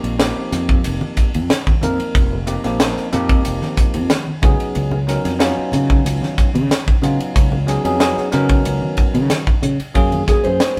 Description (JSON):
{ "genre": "electric jazz fusion", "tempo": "92 BPM", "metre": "4/4", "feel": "straight", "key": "unclear", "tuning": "A4 = 440 Hz", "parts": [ { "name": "bell-like tine electric piano", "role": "accompaniment", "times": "0.0-10.8 s", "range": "F3 to Bb4", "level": "-24 LUFS", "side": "equal", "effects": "none" }, { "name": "fretless electric bass", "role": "bass", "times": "0.0-10.8 s", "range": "F1 to Db3", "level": "-22 LUFS", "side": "equal", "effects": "none" }, { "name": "crisp fusion drum kit", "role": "drums", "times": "0.0-10.8 s", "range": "hi-hat, kick drum, ride cymbal, snare drum", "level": "-20 LUFS", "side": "equal", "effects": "none" }, { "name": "congas", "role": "percussion", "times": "0.5-10.3 s", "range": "none", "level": "-29 LUFS", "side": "equal", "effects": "none" }, { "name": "nylon-string guitar", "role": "melody", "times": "10.3-10.8 s", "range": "Ab4 to C5", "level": "-19 LUFS", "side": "equal", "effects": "none" } ], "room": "light reverb", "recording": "band playing live in one room", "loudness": "-17 LUFS", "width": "mono", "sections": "0.0-10.0 A section", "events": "none", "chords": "0.0 F9sus4; 4.4 Db9sus4; 10.0 Gbmaj9" }